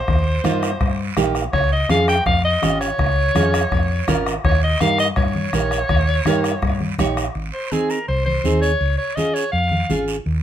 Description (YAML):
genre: latin, cumbia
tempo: 165 BPM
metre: 4/4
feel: straight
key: unclear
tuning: A4 = 443 Hz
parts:
  - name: breathy soprano saxophone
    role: melody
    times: 0.0-10.0 s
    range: Ab4 to G5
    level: -21 LUFS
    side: equal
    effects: none
  - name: hollow-body short-scale fingered electric bass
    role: bass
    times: 0.1-10.4 s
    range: Ab1 to G2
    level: -21 LUFS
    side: equal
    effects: none
  - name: bombo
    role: percussion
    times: 0.1-7.4 s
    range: none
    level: -23 LUFS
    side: left 1 dB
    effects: none
  - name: guiro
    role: percussion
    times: 0.1-10.4 s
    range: none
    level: -32 LUFS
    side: right 6 dB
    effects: none
  - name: nylon-string guitar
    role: accompaniment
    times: 0.4-10.2 s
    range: Bb3 to Db5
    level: -21 LUFS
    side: right 3 dB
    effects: none
  - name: congas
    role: percussion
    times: 0.4-10.1 s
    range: none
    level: -26 LUFS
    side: equal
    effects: none
room: moderate studio reverb, RT60 0.6 s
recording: minimal, uncompressed stereo recording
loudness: -17 LUFS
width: side -10 dB against mid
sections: 0.0-7.4 A section; 7.4-10.4 B section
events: none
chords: 0.0 Eb; 1.5 Db; 4.4 Eb7; 7.4 Ab; 8.8 Db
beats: | 0.08 0.45 0.81 1.17 | 1.54 1.90 2.27 2.63 | 2.99 3.35 3.72 4.08 | 4.45 4.81 5.17 5.54 | 5.90 6.26 6.63 6.99 | 7.35 7.72 8.08 8.45 | 8.81 9.17 9.54 9.90 | 10.27